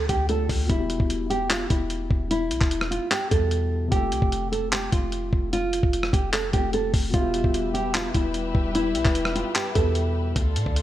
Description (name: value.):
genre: hip hop, trap.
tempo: 149 BPM.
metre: 4/4.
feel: half-time.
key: E phrygian.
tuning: A4 = 439 Hz.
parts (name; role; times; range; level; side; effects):
nylon-string guitar; melody; 0.0-10.3 s; E4 to A4; -26 LUFS; right 1 dB; none.
dark concert grand piano; accompaniment; 0.0-10.4 s; B2 to E5; -33 LUFS; left 5 dB; none.
clean 808-style bass; bass; 0.0-10.8 s; E1 to A2; -28 LUFS; equal; none.
lo-fi sampler-style drum kit; drums; 0.1-10.8 s; handclaps, hi-hat, kick drum, rim click; -24 LUFS; equal; none.
dark studio string section; sustained chords; 7.1-10.8 s; D3 to E5; -32 LUFS; left 2 dB; none.
room: light reverb.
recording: none.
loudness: -21 LUFS.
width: side -13 dB against mid.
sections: 0.0-10.8 A section.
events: none.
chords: 0.0 Dm; 0.7 Em; 3.9 F; 7.1 Em.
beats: 0.29 | 0.70 1.10 1.50 1.90 | 2.31 2.71 3.11 3.52 | 3.92 4.32 4.72 5.13 | 5.53 5.93 6.33 6.74 | 7.14 7.54 7.94 8.35 | 8.75 9.15 9.55 9.96 | 10.36 10.76.